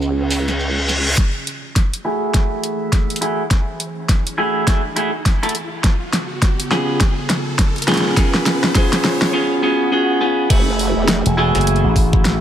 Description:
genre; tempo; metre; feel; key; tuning
glitch hop; 103 BPM; 4/4; swing 60% on 16ths; unclear; A4 = 440 Hz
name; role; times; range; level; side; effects
warbly tape-like pad; sustained chords; 0.0-12.4 s; C#3 to G#4; -28 LUFS; right 1 dB; chorus, built-in reverb, sidechain pumping
clean electric guitar; stabs; 0.0-12.4 s; A3 to A4; -19 LUFS; right 1 dB; sidechain pumping, low-pass filter, dub echo
formant-sweep wobble bass; bass; 0.0-1.2, 10.5-11.2 s; E1 to C#2; -21 LUFS; equal; chorus, tube saturation
shekere; percussion; 0.0-1.2 s; none; -28 LUFS; right 2 dB; none
reverse cymbal, riser and swell; sound effects; 0.2-10.5 s; none; -26 LUFS; equal; none
pop drum kit; drums; 0.3-12.4 s; crash cymbal, hi-hat, snare drum; -20 LUFS; equal; overdrive
electronic kick drum; drums; 1.2-12.2 s; none; -16 LUFS; equal; overdrive
slap bass with an envelope filter; bass; 11.3-12.4 s; E1 to A1; -17 LUFS; equal; none
room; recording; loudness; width
light reverb, digital ambience; none; -15 LUFS; side -10 dB against mid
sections
0.0-1.2 A section; 1.2-10.5 B section; 10.5-12.4 C section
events
filter sweep on ambient pad 0.0-1.2, 1.2-10.5; reverse cymbal 0.2-1.2; build-up 1.2-10.5; drum fill 1.2-9.3; riser 1.2-9.3; filter sweep on clean electric guitar 1.2-10.5; swell 9.3-10.5; drop 10.5-12.4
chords
0.0 C#7; 1.2 F#m9; 5.8 C#7; 10.5 F#m9

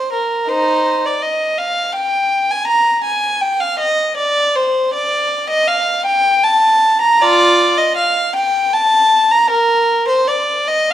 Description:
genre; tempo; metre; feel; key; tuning
classical, baroque-style suite movement for unaccompanied violin; 79 BPM; 3/4; rubato; Eb major, Bb major from 5.0 s; A4 = 440 Hz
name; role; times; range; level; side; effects
rich violin; solo; 0.0-10.9 s; Eb4 to Bb5; -12 LUFS; equal; none
room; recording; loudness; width
moderate recital hall reverb, RT60 1.3 s; none; -12 LUFS; side -11 dB against mid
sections
0.0-10.9 A section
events
none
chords
none

